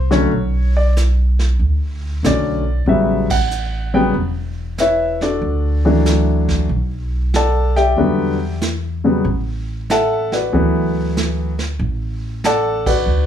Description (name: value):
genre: jazz piano trio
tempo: 94 BPM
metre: 4/4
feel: swing 67% on 8ths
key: unclear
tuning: A4 = 440 Hz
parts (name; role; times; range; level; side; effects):
- warm upright piano; melody; 0.0-13.3 s; C#3 to A5; -17 LUFS; left 1 dB; none
- upright bass; bass; 0.0-13.3 s; E1 to E2; -19 LUFS; equal; none
- vintage brush drum kit; drums; 0.1-13.3 s; brushed snare drum, hi-hat, kick drum, ride cymbal, snare drum; -25 LUFS; right 4 dB; none
room: little or no reverb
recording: studio reverb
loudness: -15 LUFS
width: side -9 dB against mid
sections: 0.0-13.3 A section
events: band accent 3.2-3.5, 12.8-13.1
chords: 0.3 Bmadd9; 2.9 A13; 5.4 Dadd9; 6.7 Bm7; 8.0 Em9; 9.2 Asus2